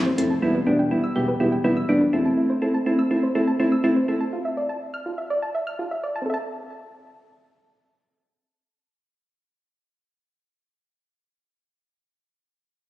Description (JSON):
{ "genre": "pop", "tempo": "123 BPM", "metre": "4/4", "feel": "straight", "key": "A minor", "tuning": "A4 = 440 Hz", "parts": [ { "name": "soft electric-piano-like synth keys", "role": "accompaniment", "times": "0.0-4.2 s", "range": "G3 to G4", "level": "-20 LUFS", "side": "equal", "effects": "chorus, tremolo" }, { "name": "soft round pluck", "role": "arpeggios", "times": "0.0-11.0 s", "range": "C4 to F6", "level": "-29 LUFS", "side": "right 1 dB", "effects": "chorus, digital delay" }, { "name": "smooth gliding synth bass", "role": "bass", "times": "0.0-2.3 s", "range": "E1 to A1", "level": "-30 LUFS", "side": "equal", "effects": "none" } ], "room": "moderate concert hall reverb, RT60 2.0 s", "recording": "recorded on a phone in the room, club reverb, compression", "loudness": "-20 LUFS", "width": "side -15 dB against mid", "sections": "0.0-6.3 A section; 6.3-10.2 B section", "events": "none", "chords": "0.4 Em; 2.1 Am/E; 4.3 Dmadd9; 6.3 Am", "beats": "| 0.42 0.91 1.40 1.89 | 2.38 2.86 3.35 3.84 | 4.33 4.82 5.30 5.79 | 6.28 6.77 7.25 7.74 | 8.23 8.72 9.21 9.69" }